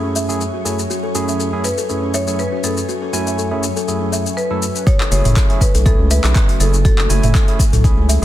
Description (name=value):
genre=afro house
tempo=121 BPM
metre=4/4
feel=swing 53% on 16ths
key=F# minor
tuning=A4 = 440 Hz
part: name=marimba with hard mallets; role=melody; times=0.0-7.8 s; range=A4 to C#5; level=-25 LUFS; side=left 2 dB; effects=dub echo
part: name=ethereal airy pad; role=sustained chords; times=0.0-8.2 s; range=F#3 to G#5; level=-26 LUFS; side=left 2 dB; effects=ensemble chorus, built-in reverb, sidechain pumping
part: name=buzzing kalimba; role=arpeggios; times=0.0-8.2 s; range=C#4 to E5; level=-25 LUFS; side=left 1 dB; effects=sidechain pumping, dub echo
part: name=barky tine electric piano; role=stabs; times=0.0-8.2 s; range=F#2 to G#5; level=-23 LUFS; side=right 2 dB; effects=overdrive, vintage 12-bit sampler grit, sidechain pumping, dub echo
part: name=afro-pop drum kit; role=drums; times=0.2-8.2 s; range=handclaps, hi-hat, shaker, toms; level=-22 LUFS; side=left 1 dB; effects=overdrive
part: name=electronic kick drum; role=drums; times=4.9-7.9 s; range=none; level=-14 LUFS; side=equal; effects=none
part: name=round analog bass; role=bass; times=5.1-8.2 s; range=F#1 to C#2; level=-15 LUFS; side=equal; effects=sidechain pumping
room=digital ambience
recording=dense, heavily limited modern master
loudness=-14 LUFS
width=side -13 dB against mid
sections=0.0-4.9 A section; 4.9-8.2 B section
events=drop 4.9-8.2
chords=0.0 F#m7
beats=0.41 | 0.90 1.40 1.89 2.39 | 2.88 3.38 3.88 4.37 | 4.87 5.37 5.86 6.36 | 6.85 7.35 7.84